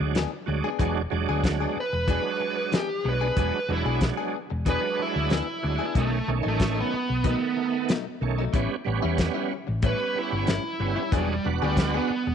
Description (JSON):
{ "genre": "straight-eighth soul blues", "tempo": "93 BPM", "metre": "4/4", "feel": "straight", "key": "E mixolydian", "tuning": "A4 = 441 Hz", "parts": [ { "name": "bright tonewheel organ", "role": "accompaniment", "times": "0.0-12.1 s", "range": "D#3 to F#4", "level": "-30 LUFS", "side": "right 11 dB", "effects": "overdrive, chorus vibrato, slow rotary speaker" }, { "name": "hollow-body short-scale fingered electric bass", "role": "bass", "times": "0.0-12.3 s", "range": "E1 to E2", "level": "-28 LUFS", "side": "left 1 dB", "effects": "none" }, { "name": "warm soul drum kit", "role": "drums", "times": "0.1-11.9 s", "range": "hi-hat, kick drum, snare drum", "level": "-27 LUFS", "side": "left 1 dB", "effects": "none" }, { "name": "direct-recorded clean electric guitar", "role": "stabs", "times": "0.2-12.3 s", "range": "A2 to G#4", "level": "-33 LUFS", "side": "left 14 dB", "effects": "none" }, { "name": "dark smooth lead guitar", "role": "melody", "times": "1.8-12.3 s", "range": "G3 to B4", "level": "-28 LUFS", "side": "right 2 dB", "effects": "overdrive" } ], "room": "light reverb, studio ambience", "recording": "1960s-style stereo with parts hard left and right, nothing above 10.9 kHz", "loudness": "-23 LUFS", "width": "side -8 dB against mid", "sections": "0.0-12.3 A section", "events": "lead electric guitar solo 0.0-12.3", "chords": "0.0 E7; 6.0 B7; 8.5 A7; 11.1 E7" }